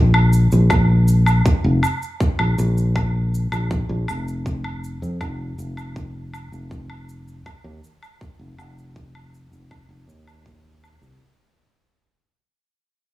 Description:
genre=folktronica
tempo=80 BPM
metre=4/4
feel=straight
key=unclear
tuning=A4 = 440 Hz
part: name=fingered electric bass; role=bass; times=0.0-11.2 s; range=F1 to F2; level=-18 LUFS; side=equal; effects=none
part: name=woodblock and shaker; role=drums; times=0.1-11.2 s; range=none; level=-26 LUFS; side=right 1 dB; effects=none
part: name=electronic kick drum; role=drums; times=0.7-10.6 s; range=none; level=-22 LUFS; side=equal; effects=none
room=little or no reverb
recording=small room reverb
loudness=-17 LUFS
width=side -16 dB against mid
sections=0.0-11.2 A section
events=fade-out 0.0-11.2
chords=none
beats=0.70 1.45 | 2.20 2.95 3.70 4.45 | 5.20 5.95 6.70 7.45 | 8.20 8.95 9.70 10.45

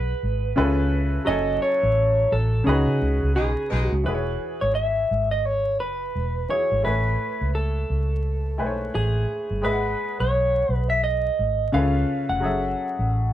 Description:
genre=R&B, neo-soul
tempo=86 BPM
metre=4/4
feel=swing 60% on 16ths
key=unclear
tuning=A4 = 440 Hz
part: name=electric guitar through a small old amp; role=melody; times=0.0-13.3 s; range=G#4 to F#5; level=-24 LUFS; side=right 1 dB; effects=none
part: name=clear baby grand piano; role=accompaniment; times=0.0-13.3 s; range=C#3 to G#5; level=-26 LUFS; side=left 1 dB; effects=none
part: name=vintage muted fingered electric bass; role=bass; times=0.0-13.3 s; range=E1 to C#3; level=-24 LUFS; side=equal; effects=none
part: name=clear horn section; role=stabs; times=3.3-3.9 s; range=B2 to D#4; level=-29 LUFS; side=equal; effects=none
room=moderate small room ambience, RT60 0.5 s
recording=band playing live in one room, vinyl crackle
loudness=-20 LUFS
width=side -12 dB against mid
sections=0.0-4.0 A section; 4.0-13.3 B section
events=band accent 1.3-4.0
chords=0.0 G#m7; 0.6 C#7alt; 1.3 F#m7; 2.7 C#9sus4; 4.0 E6; 6.8 Amaj9; 9.6 G#m7; 11.7 C#aug7; 12.4 F#m7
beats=0.56 | 1.26 1.95 2.65 3.35 | 4.05 4.74 5.44 6.14 | 6.84 7.54 8.23 8.93 | 9.63 10.32 11.02 11.72 | 12.42 13.12

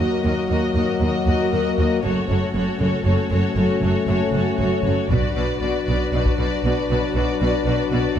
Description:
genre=cinematic, epic orchestral film score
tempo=78 BPM (dotted quarters)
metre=12/8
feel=straight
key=unclear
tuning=A4 = 440 Hz
part: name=warm symphonic violin section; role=melody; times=0.0-8.2 s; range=Db5 to Eb5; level=-28 LUFS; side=left 4 dB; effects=none
part: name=rich symphonic violin section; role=second line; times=0.0-8.2 s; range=A4 to B4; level=-29 LUFS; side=left 2 dB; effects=none
part: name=clear symphonic viola section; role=accompaniment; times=0.0-8.2 s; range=Gb4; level=-28 LUFS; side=right 2 dB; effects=none
part: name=warm French horn section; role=sustained chords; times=0.0-8.2 s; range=F#3 to D4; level=-24 LUFS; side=left 5 dB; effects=none
part: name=clear symphonic cello section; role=bass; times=0.0-8.2 s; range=Eb2 to B2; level=-25 LUFS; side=right 1 dB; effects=none
part: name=clear symphonic double bass section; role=bass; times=0.0-8.2 s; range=Gb1 to Eb2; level=-24 LUFS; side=right 2 dB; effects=none
part: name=taiko ensemble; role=drums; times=5.1-6.5 s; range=none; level=-24 LUFS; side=equal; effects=none
room=moderate scoring stage reverb, RT60 1.8 s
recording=dark, warm production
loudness=-18 LUFS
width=side -9 dB against mid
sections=0.0-8.2 A section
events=build-up 0.0-8.2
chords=0.0 Ebm; 2.0 Gbm; 5.1 Bm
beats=0.49 1.26 | 2.03 2.80 3.57 4.33 | 5.10 5.87 6.64 7.41 | 8.18

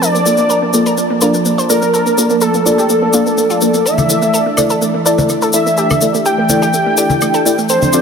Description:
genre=progressive house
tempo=125 BPM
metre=4/4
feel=straight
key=unclear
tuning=A4 = 441 Hz
part: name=wide unison lead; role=melody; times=0.0-8.0 s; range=A4 to G5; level=-15 LUFS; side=equal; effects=digital delay
part: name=warm analog pad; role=sustained chords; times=0.0-8.0 s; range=E3 to A5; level=-19 LUFS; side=right 2 dB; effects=chorus
part: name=analog pluck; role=arpeggios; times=0.0-8.0 s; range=A3 to C5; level=-19 LUFS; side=right 2 dB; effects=chorus, digital delay
part: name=tube shaker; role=percussion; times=0.0-8.0 s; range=none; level=-19 LUFS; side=left 4 dB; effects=none
part: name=deep mellow chord stab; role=stabs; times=0.3-8.0 s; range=Bb3 to D5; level=-17 LUFS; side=left 2 dB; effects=chorus, digital delay
part: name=congas, woodblock and cowbell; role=percussion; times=4.0-8.0 s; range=none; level=-20 LUFS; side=left 3 dB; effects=none
room=moderate huge ambient reverb, RT60 8.5 s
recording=none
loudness=-10 LUFS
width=side -6 dB against mid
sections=0.0-8.0 A section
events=filter sweep on synth stab 0.0-8.0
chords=0.0 Bbmaj7; 3.9 Asus4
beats=| 0.02 0.50 0.98 1.46 | 1.94 2.42 2.90 3.38 | 3.86 4.34 4.82 5.30 | 5.78 6.26 6.74 7.22 | 7.70

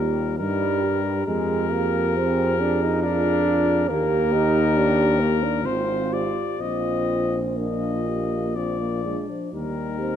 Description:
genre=classical, hymn-like piece for brass band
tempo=61-70 BPM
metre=3/4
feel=rubato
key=Eb major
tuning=A4 = 439 Hz
part: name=clear cornet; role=melody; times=0.0-10.2 s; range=Bb4 to Eb5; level=-28 LUFS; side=left 9 dB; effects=none
part: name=mellow French horn section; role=second line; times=0.0-10.2 s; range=F4 to Ab4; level=-29 LUFS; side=right 6 dB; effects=none
part: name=mellow trombone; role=accompaniment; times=0.0-10.2 s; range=F3 to Eb4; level=-26 LUFS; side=right 2 dB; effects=none
part: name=warm euphonium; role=accompaniment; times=0.0-10.2 s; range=D4 to G4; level=-29 LUFS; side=left 2 dB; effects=none
part: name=warm tuba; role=bass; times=0.0-10.2 s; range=Ab1 to G2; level=-26 LUFS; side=equal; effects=none
room=moderate concert hall reverb, RT60 1.9 s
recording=dark, warm production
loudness=-20 LUFS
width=side -9 dB against mid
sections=0.0-10.2 A section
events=none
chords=0.0 Eb; 1.3 Bb7/F; 3.9 Eb; 5.6 Fm/Ab; 6.6 Bbsus4; 8.6 Bb; 9.5 Eb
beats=0.38 | 1.27 2.15 3.03 | 3.89 4.76 5.65 | 6.60 7.58 8.56 | 9.54

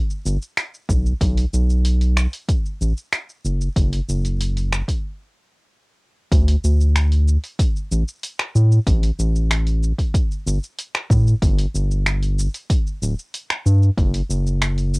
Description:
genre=sunset chillout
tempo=94 BPM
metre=4/4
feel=straight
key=G major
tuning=A4 = 442 Hz
part: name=deep house drum kit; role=drums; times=0.1-15.0 s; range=finger snaps, hi-hat, shaker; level=-25 LUFS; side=equal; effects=overdrive
part: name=round analog bass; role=bass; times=0.3-15.0 s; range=D1 to A2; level=-17 LUFS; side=equal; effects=none
part: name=electronic kick drum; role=drums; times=0.9-14.1 s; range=none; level=-19 LUFS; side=equal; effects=overdrive
room=little or no reverb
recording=home recording on cassette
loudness=-17 LUFS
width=side -30 dB against mid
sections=0.0-6.3 A section; 6.3-15.0 B section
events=stop 5.0-6.3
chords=none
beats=0.57 | 1.21 1.85 2.49 3.13 | 3.77 4.40 5.04 5.68 | 6.32 6.96 7.60 8.23 | 8.87 9.51 10.15 10.79 | 11.43 12.06 12.70 13.34 | 13.98 14.62

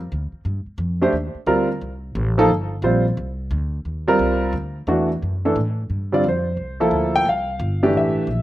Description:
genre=modal jazz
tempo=176 BPM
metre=4/4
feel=swing 65% on 8ths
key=C dorian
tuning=A4 = 440 Hz
part: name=upright bass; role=bass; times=0.0-8.4 s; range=G1 to A2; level=-24 LUFS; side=equal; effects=none
part: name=warm concert grand piano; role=accompaniment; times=1.0-8.4 s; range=D3 to G5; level=-18 LUFS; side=right 1 dB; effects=slapback echo
room=little or no reverb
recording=recorded outdoors, with no room sound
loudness=-18 LUFS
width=side -15 dB against mid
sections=0.0-5.9 A section; 5.9-8.4 B section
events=none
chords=0.0 Cm11; 4.5 D; 5.9 G9sus4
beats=0.10 | 0.45 0.79 1.13 1.47 | 1.81 2.15 2.49 2.83 | 3.17 3.51 3.85 4.20 | 4.54 4.88 5.22 5.56 | 5.90 6.24 6.58 6.92 | 7.26 7.60 7.94 8.28

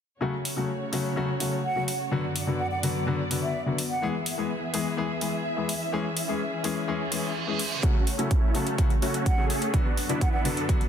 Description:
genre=EDM, festival progressive house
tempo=126 BPM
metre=4/4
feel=straight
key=F# minor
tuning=A4 = 441 Hz
part: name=warm baby grand piano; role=accompaniment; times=0.2-10.8 s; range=C#3 to G#4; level=-29 LUFS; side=left 3 dB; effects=sidechain pumping, tape echo
part: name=muted symphonic string section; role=sustained chords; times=0.2-10.9 s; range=F#2 to E5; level=-34 LUFS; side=equal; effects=sidechain pumping, low-pass filter
part: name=electronic hi-hat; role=drums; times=0.5-10.9 s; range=none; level=-33 LUFS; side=equal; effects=high-pass filter on hats, high-pass filter on room
part: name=mellow hollow concert flute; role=melody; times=1.6-4.1, 9.3-10.4 s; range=E5 to F#5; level=-33 LUFS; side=right 1 dB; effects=tape echo
part: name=reverse cymbal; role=sound effects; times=7.0-7.8 s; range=none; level=-34 LUFS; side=right 6 dB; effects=none
part: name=supersaw chords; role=riff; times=7.8-10.6 s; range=A3 to A4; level=-30 LUFS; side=right 1 dB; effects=sidechain pumping, low-pass filter, tape echo
part: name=electronic kick drum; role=drums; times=7.8-10.8 s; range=none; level=-24 LUFS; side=right 1 dB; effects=none
room=light reverb, small room ambience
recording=dense, heavily limited modern master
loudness=-24 LUFS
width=side -8 dB against mid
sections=0.2-7.8 A section; 7.8-10.9 B section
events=reverse cymbal 7.0-7.8; build-up 7.8-10.9; filter sweep on supersaw synth 7.8-10.9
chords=0.2 F#m; 2.1 Bm/F#; 4.0 E; 5.9 C#m; 7.8 F#m; 9.7 Bm/F#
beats=| 0.21 0.69 1.17 1.64 | 2.12 2.60 3.07 3.55 | 4.02 4.50 4.98 5.45 | 5.93 6.40 6.88 7.36 | 7.83 8.31 8.79 9.26 | 9.74 10.21 10.69

